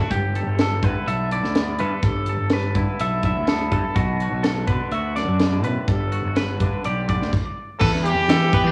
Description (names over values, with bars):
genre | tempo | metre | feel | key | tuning
math rock and midwest emo | 125 BPM | 4/4 | straight | G major | A4 = 442 Hz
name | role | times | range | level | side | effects
twangy electric guitar | accompaniment | 0.0-8.7 s | E2 to A4 | -30 LUFS | equal | harmonic tremolo, cassette tape
clean electric guitar | arpeggios | 0.0-8.7 s | F#4 to E5 | -29 LUFS | equal | cassette tape, tape echo
fuzz fingered electric bass | bass | 0.1-8.7 s | G1 to E3 | -26 LUFS | equal | overdrive
crisp fusion drum kit | drums | 0.1-8.6 s | crash cymbal, hi-hat, kick drum, snare drum | -26 LUFS | equal | cassette tape
brilliant trumpet | melody | 7.8-8.7 s | G4 to A4 | -23 LUFS | equal | cassette tape
room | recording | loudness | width
light reverb, studio ambience | home recording on cassette | -22 LUFS | mono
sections
0.0-7.8 A section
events
stop 7.3-7.8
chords
0.1 G69; 4.0 Bm7; 5.9 Gmaj9; 7.8 Em